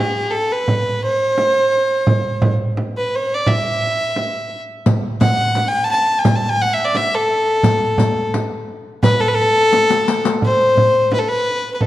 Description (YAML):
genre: Arabic maqam ensemble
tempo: 86 BPM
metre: 4/4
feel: straight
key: A maqam rast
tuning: A4 = 440 Hz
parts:
  - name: rich fiddle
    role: melody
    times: 0.0-11.9 s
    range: G#4-49c to A5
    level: -16 LUFS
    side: equal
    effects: none
  - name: frame drum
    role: percussion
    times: 0.7-11.9 s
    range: none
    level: -19 LUFS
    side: right 1 dB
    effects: none
  - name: riq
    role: percussion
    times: 4.9-10.4 s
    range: none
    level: -23 LUFS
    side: left 5 dB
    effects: none
room: wet recital hall reverb, RT60 1.9 s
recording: dark, warm production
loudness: -14 LUFS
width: side -14 dB against mid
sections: 0.0-10.4 A section; 10.4-11.9 B section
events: drum fill 9.7-10.4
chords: none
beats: 0.69 1.38 | 2.08 2.77 3.47 4.17 | 4.86 5.56 6.25 6.95 | 7.64 8.34 9.04 9.73 | 10.43 11.12 11.82